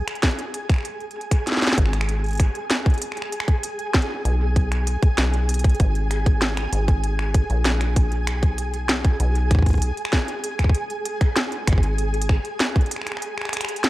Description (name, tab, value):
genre	IDM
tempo	97 BPM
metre	4/4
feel	straight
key	G# minor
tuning	A4 = 441 Hz
part	deep acid bass	bass	0.0-12.4 s	G#1 to B1	-22 LUFS	equal	tube saturation
part	flickering grainy texture	texture	0.0-13.9 s	G#4 to G#5	-30 LUFS	right 1 dB	built-in reverb
part	organic electronic drum kit	drums	0.1-13.9 s	finger snaps, hi-hat, snare drum	-25 LUFS	equal	none
part	electronic kick drum	drums	0.2-12.9 s	none	-18 LUFS	equal	none
room	little or no reverb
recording	dry, gritty hardware recording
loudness	-19 LUFS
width	side -17 dB against mid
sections	0.0-13.9 A section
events	break 13.2-13.9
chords	0.0 N.C.; 3.3 G#m; 5.8 G#sus2; 8.3 G#m/B; 10.7 N.C.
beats	0.23 | 0.85 1.47 2.09 2.71 | 3.32 3.94 4.56 5.18 | 5.80 6.42 7.04 7.65 | 8.27 8.89 9.51 10.13 | 10.75 11.37 11.98 12.60 | 13.22 13.84